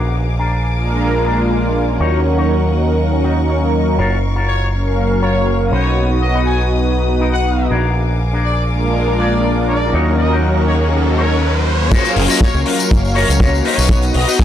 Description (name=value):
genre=nu-disco, nu disco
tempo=121 BPM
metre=4/4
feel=straight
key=F# major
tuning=A4 = 442 Hz
part: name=rich studio string section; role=sustained chords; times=0.0-14.4 s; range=A#4 to D#6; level=-28 LUFS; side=left 3 dB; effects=sidechain pumping
part: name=electric guitar with an envelope filter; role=riff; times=0.0-14.4 s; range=D4 to A#5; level=-24 LUFS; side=left 3 dB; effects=lush chorus, low-pass filter
part: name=picked electric bass with an envelope filter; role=bass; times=0.0-14.2 s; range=F#1 to D#2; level=-17 LUFS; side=equal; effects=none
part: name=warm analog pad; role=accompaniment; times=0.7-14.4 s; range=F#3 to E#5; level=-18 LUFS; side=equal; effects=chorus, sidechain pumping
part: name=brilliant trumpet section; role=melody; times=4.5-14.4 s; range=C#5 to G#5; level=-24 LUFS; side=left 1 dB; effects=analog delay
part: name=riser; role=sound effects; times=9.7-11.9 s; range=none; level=-24 LUFS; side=equal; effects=none
part: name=damped 70s drum kit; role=drums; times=11.9-14.4 s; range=crash cymbal, hi-hat, snare drum, tambourine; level=-20 LUFS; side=left 4 dB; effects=none
part: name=kick drum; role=drums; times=11.9-14.4 s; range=none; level=-13 LUFS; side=equal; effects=none
room=light reverb, studio reverb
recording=dry, gritty hardware recording, transformer saturation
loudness=-13 LUFS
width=side -10 dB against mid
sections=0.0-11.9 A section; 11.9-14.4 B section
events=clean electric guitar fill 3.0-4.0, 7.0-8.0; riser 9.7-11.9; drop 11.9-14.4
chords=0.0 A#7; 2.0 D#m7; 4.0 F#maj7; 5.7 B; 7.7 A#7; 9.9 D#m7; 11.9 F#maj7; 13.7 B